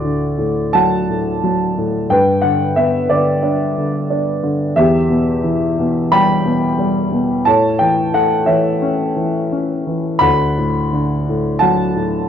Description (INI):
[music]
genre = classical, lyrical solo piano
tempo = 89 BPM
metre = 4/4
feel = rubato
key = D major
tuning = A4 = 439 Hz
[part]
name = dark grand piano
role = solo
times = 0.0-12.3 s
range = D2 to B5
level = -14 LUFS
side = equal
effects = none
[sound]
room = moderate studio reverb, RT60 0.8 s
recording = worn, warbling old tape, cassette tape, warbly pitch drift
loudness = -14 LUFS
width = side -8 dB against mid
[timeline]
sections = 0.0-12.3 A section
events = none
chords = 0.0 D; 2.1 G; 4.8 Em; 7.5 A; 10.2 D